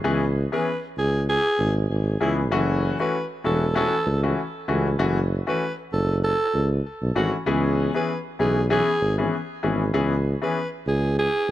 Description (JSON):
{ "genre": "afrobeats", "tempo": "97 BPM", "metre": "4/4", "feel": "swing 55% on 16ths", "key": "C# minor", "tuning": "A4 = 440 Hz", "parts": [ { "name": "warm grand piano", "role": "accompaniment", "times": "0.0-10.6 s", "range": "E3 to G#4", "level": "-25 LUFS", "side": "left 3 dB", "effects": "none" }, { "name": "mellow tuba", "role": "bass", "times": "0.0-11.5 s", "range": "E1 to C#2", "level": "-23 LUFS", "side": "right 1 dB", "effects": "none" }, { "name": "breathy alto saxophone", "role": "melody", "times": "0.5-11.5 s", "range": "E4 to B4", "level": "-26 LUFS", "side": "right 1 dB", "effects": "tape echo" } ], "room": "studio reverb", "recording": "faint mains hum", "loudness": "-21 LUFS", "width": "side -14 dB against mid", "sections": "0.0-11.5 A section", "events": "none", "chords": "0.0 C#m7; 2.5 F#m7; 7.5 C#m7" }